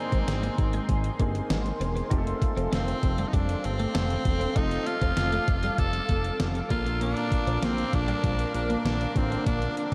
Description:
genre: 1980s-style pop.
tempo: 98 BPM.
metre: 4/4.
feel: straight.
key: unclear.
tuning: A4 = 441 Hz.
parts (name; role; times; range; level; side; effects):
raspy tenor saxophone; melody; 0.0-9.9 s; C4 to A4; -34 LUFS; equal; delay.
clear baby grand piano; accompaniment; 0.0-9.9 s; Bb2 to Bb4; -38 LUFS; equal; lush chorus.
phased analog pad; sustained chords; 0.0-9.9 s; A4 to D6; -38 LUFS; equal; phaser, chorus.
twelve-string electric guitar; riff; 0.1-9.8 s; G3 to Eb4; -38 LUFS; equal; ensemble chorus.
fat analog bass; bass; 0.1-9.7 s; Fb1 to Bb1; -32 LUFS; equal; none.
gated 80s digital drum machine; drums; 0.1-9.9 s; hi-hat, kick drum, snare drum; -31 LUFS; equal; gated reverb, gated reverb snare, overdrive.
room: wet huge ambient reverb, RT60 8.0 s.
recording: dreamy mix soaked in reverb.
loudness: -27 LUFS.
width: mono.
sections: 0.0-9.9 A section.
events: none.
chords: 0.0 Abadd9; 2.1 F; 6.7 Bb.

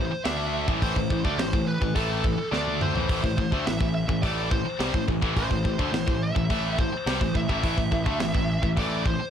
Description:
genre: heavy metal.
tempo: 106 BPM.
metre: 4/4.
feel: straight.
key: A minor.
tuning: A4 = 440 Hz.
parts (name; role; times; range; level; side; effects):
high-gain lead guitar; melody; 0.0-9.3 s; A4 to E5; -31 LUFS; right 1 dB; distortion, digital delay.
tight distorted guitar; riff; 0.0-9.2 s; A2 to D4; -29 LUFS; left 12 dB; distortion.
tight distorted guitar; riff; 0.0-9.2 s; A2 to D4; -30 LUFS; right 12 dB; distortion.
fuzz picked electric bass; bass; 0.0-9.2 s; A1 to D2; -31 LUFS; equal; overdrive.
tight metal drum kit; drums; 0.2-9.2 s; hi-hat, kick drum, snare drum, toms; -28 LUFS; equal; none.
room: light reverb.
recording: dark, warm production.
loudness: -23 LUFS.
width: side -8 dB against mid.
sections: 0.0-9.3 A section.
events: drum fill 2.5-3.1.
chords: 0.0 Am.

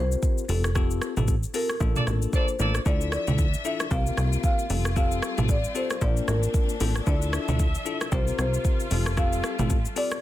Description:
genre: afrobeats.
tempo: 114 BPM.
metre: 4/4.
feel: swing 58% on 16ths.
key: unclear.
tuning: A4 = 436 Hz.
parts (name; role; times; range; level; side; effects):
marimba with medium mallets; melody; 0.0-10.2 s; A4 to F5; -32 LUFS; equal; ping-pong delay.
bell-like tine electric piano; accompaniment; 0.0-10.2 s; Bb3 to Bb4; -32 LUFS; left 8 dB; none.
plucky analog bass; bass; 0.0-9.9 s; F1 to D2; -26 LUFS; equal; none.
afro-pop drum kit; drums; 0.1-10.2 s; hi-hat, kick drum, rim click, shaker, toms; -26 LUFS; right 1 dB; soft clipping on snare.
mellow horn section; second line; 2.0-2.8 s; Bb3 to D5; -31 LUFS; right 2 dB; none.
warm studio string section; sustained chords; 2.9-10.2 s; C3 to E5; -35 LUFS; left 2 dB; none.
room: little or no reverb.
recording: dense, heavily limited modern master.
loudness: -22 LUFS.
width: side -14 dB against mid.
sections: 0.0-10.2 A section.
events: band accent 0.8-2.9.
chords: 0.5 Fadd9; 1.8 Bbmaj7; 2.9 Dmadd9; 3.9 C7sus4; 4.7 Fadd9; 6.0 Bbmaj7; 7.1 Dmadd9; 8.1 C7sus4; 8.9 Fadd9.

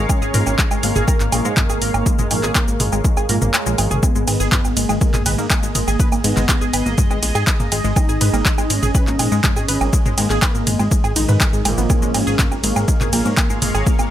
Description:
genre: melodic techno.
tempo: 122 BPM.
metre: 4/4.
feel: straight.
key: G# dorian.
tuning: A4 = 440 Hz.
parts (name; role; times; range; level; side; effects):
sweeping resonant pad; sustained chords; 0.0-14.1 s; G#3 to E#5; -28 LUFS; right 2 dB; chorus, sidechain pumping.
tight sequenced synth; arpeggios; 0.0-14.1 s; G#3 to B4; -25 LUFS; left 1 dB; chorus, sidechain pumping, dub echo.
plucky analog bass; bass; 0.0-14.1 s; G#1 to G#2; -21 LUFS; equal; sidechain pumping.
wide unison lead; melody; 0.1-14.0 s; A#3 to D#4; -26 LUFS; equal; ensemble chorus, digital delay.
electronic kick drum; drums; 0.1-14.0 s; none; -18 LUFS; equal; overdrive.
punchy analog drum machine; drums; 0.1-14.1 s; handclaps, hi-hat, ride cymbal, shaker, toms, woodblock; -20 LUFS; right 1 dB; overdrive.
analog synth brass; stabs; 0.3-13.2 s; G#2 to A#3; -27 LUFS; right 3 dB; chorus, sidechain pumping, dub echo.
room: digital ambience.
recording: none.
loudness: -15 LUFS.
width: side -12 dB against mid.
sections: 0.0-14.1 A section.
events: kick drops out 3.5-4.0; drum fill 3.8.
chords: 0.0 A#m/G#; 4.0 G#m; 11.9 A#m/G#.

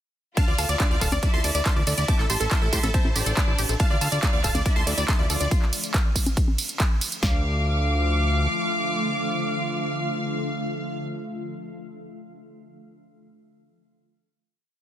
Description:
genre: uplifting trance.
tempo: 140 BPM.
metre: 4/4.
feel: straight.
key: D minor.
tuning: A4 = 436 Hz.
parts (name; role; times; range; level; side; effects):
supersaw stab; melody; 0.4-11.0 s; A4 to D6; -30 LUFS; equal; sidechain pumping, tape echo.
rich studio violin section; second line; 0.4-11.0 s; D4 to F5; -30 LUFS; equal; vintage 12-bit sampler grit, dub echo.
wide unison pluck; second line; 0.4-11.0 s; A4 to D6; -38 LUFS; equal; none.
tight sequenced synth; arpeggios; 0.4-7.4 s; C4 to D5; -34 LUFS; left 2 dB; chorus, phaser, sidechain pumping, digital delay.
big-room dance drum kit; drums; 0.4-7.3 s; kick drum, snare drum; -22 LUFS; equal; none.
big-room dance drum kit; drums; 0.4-7.2 s; congas, handclaps, hi-hat, ride cymbal, tambourine; -28 LUFS; right 2 dB; none.
fat analog bass; bass; 0.5-8.5 s; D1 to A2; -25 LUFS; equal; sidechain pumping.
shimmering ambient pad; sustained chords; 4.9-11.0 s; D3 to F4; -31 LUFS; left 1 dB; chorus, built-in reverb, sidechain pumping.
room: digital ambience.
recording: dense, heavily limited modern master.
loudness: -21 LUFS.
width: side -11 dB against mid.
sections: 0.4-7.2 drop; 7.2-10.7 final chord.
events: drop 0.4-7.2.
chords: 0.4 Dm; 2.1 Am7; 3.8 Dm; 5.5 N.C.; 7.2 Dm.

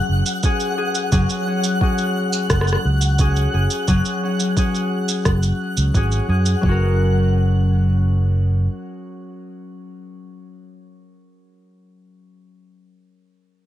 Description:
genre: folktronica.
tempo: 87 BPM.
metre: 4/4.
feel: straight.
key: F# major.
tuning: A4 = 440 Hz.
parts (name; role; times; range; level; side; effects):
concert harp; arpeggios; 0.0-12.9 s; F#3 to A#4; -23 LUFS; left 2 dB; vintage 12-bit sampler grit, tape echo.
twinkling granular texture; texture; 0.0-6.6 s; F#5 to F#6; -28 LUFS; left 2 dB; built-in reverb.
fingered electric bass; bass; 0.1-8.7 s; F#1 to F#2; -17 LUFS; right 1 dB; none.
electronic shaker and rim click; drums; 0.3-6.6 s; none; -25 LUFS; right 2 dB; none.
electronic kick drum; drums; 0.4-6.8 s; none; -20 LUFS; equal; none.
room: light reverb.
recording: none.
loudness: -16 LUFS.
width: side -12 dB against mid.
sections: 0.0-6.6 A section; 6.6-9.4 B section.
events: none.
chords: 0.0 F#sus2; 6.6 F#.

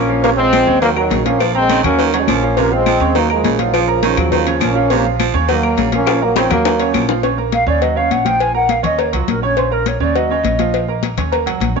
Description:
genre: latin, salsa.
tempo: 206 BPM.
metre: 4/4.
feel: straight.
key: Bb minor.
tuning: A4 = 440 Hz.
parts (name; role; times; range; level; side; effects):
clear trombone section; melody; 0.0-7.1 s; Db3 to Db4; -16 LUFS; left 1 dB; none.
raspy baritone saxophone; second line; 0.0-7.1 s; C3 to F3; -22 LUFS; right 11 dB; none.
clear grand piano; accompaniment; 0.0-11.8 s; Db3 to Db6; -19 LUFS; right 12 dB; none.
upright bass; bass; 0.0-11.8 s; Bb1 to Eb2; -21 LUFS; equal; none.
congas; percussion; 0.2-11.8 s; none; -23 LUFS; left 13 dB; none.
cowbell and bongos; percussion; 0.2-11.8 s; none; -22 LUFS; left 15 dB; none.
claves; percussion; 0.5-7.1 s; none; -28 LUFS; left 15 dB; none.
concert flute; melody; 7.5-11.0 s; F4 to Ab5; -17 LUFS; equal; none.
room: moderate echo chamber reverb, RT60 1.4 s, studio ambience.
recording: 1960s-style stereo with parts hard left and right, nothing above 7.6 kHz.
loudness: -13 LUFS.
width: side -4 dB against mid.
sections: 0.0-7.2 A section; 7.2-11.8 B section.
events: drum fill 6.1-7.2; flute solo 7.2-11.8.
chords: 0.2 Bbmadd9; 0.8 Ebm7; 1.4 Bbmadd9; 3.2 Bbm; 4.9 Bbmadd9; 5.5 Bbm; 7.8 Ebm7; 8.4 Bbm; 9.0 Ebm7; 9.6 Bbm; 10.2 Ebm7; 10.7 Bbm.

